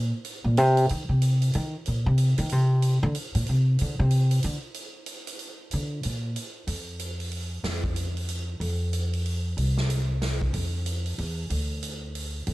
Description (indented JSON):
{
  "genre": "modal jazz",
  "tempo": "186 BPM",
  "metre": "3/4",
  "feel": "swing 62% on 8ths",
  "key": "unclear",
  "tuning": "A4 = 440 Hz",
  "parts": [
    { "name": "upright bass", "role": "bass", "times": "0.0-12.5 s", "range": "C2 to Eb3", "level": "-24 LUFS", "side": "equal", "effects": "tube saturation" },
    { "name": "swinging big-band drum kit", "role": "drums", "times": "0.2-12.5 s", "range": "hi-hat, kick drum, snare drum", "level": "-35 LUFS", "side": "right 2 dB", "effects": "none" }
  ],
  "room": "little or no reverb",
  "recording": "dry, gritty hardware recording",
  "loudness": "-24 LUFS",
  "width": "side -19 dB against mid",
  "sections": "0.0-6.7 A section; 6.7-12.5 B section",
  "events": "upright bass solo 0.0-6.7",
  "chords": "none",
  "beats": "0.24 0.56 | 0.89 1.21 1.53 | 1.85 2.17 2.50 | 2.82 3.14 3.46 | 3.78 4.10 4.42 | 4.75 5.07 5.39 | 5.71 6.03 6.35 | 6.67 7.00 7.32 | 7.64 7.96 8.28 | 8.61 8.93 9.25 | 9.57 9.89 10.21 | 10.54 10.86 11.18 | 11.50 11.82 12.14 | 12.46"
}